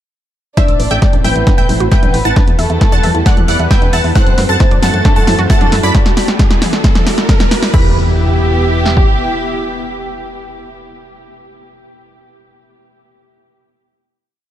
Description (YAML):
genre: uplifting trance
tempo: 134 BPM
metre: 4/4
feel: straight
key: E minor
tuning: A4 = 440 Hz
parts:
  - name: wide unison pluck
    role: melody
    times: 0.6-10.8 s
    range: A4 to B5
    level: -21 LUFS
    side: right 1 dB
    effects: phaser, sidechain pumping, digital delay
  - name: dark studio violin section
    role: second line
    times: 0.6-10.8 s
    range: A3 to D5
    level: -20 LUFS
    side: equal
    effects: ping-pong delay
  - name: plucky unison lead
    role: second line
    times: 0.6-10.8 s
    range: E6 to B6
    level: -25 LUFS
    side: equal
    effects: analog chorus, sidechain pumping, digital delay
  - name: supersaw pad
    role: sustained chords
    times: 0.8-10.8 s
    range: B3 to E5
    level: -23 LUFS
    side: equal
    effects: sidechain pumping
  - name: analog pluck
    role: arpeggios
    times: 0.6-7.9 s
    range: B3 to E5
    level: -24 LUFS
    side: right 4 dB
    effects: chorus, sidechain pumping, digital delay
  - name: punchy analog drum machine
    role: drums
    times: 0.6-9.1 s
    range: kick drum, snare drum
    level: -11 LUFS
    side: equal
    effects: none
  - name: punchy analog drum machine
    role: drums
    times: 0.6-7.8 s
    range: crash cymbal, hi-hat, snare drum, toms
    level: -18 LUFS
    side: equal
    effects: sidechain pumping on hats, sidechain pumping on toms, sidechain pumping on cymbals
  - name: riser and impact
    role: sound effects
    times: 3.7-10.8 s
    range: none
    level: -23 LUFS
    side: right 1 dB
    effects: none
  - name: solid FM bass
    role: bass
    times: 0.7-9.0 s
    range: A1 to F#2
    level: -16 LUFS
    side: equal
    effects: sidechain pumping
room: digital ambience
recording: dark, warm production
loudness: -9 LUFS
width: side -12 dB against mid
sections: 0.6-7.7 build; 7.7-11.3 final chord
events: build-up 0.6-7.7; drum fill 0.6-7.7; filter sweep on synth arpeggio sound 0.6-5.9; riser 3.7-7.7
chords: 0.6 Am; 2.4 Em; 4.2 F#dim; 5.9 Dadd9; 7.7 Em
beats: | 0.57 1.02 1.47 1.92 | 2.36 2.81 3.26 3.71 | 4.15 4.60 5.05 5.50 | 5.95 6.39 6.84 7.29 | 7.74 8.18 8.63 9.08 | 9.53 9.97 10.42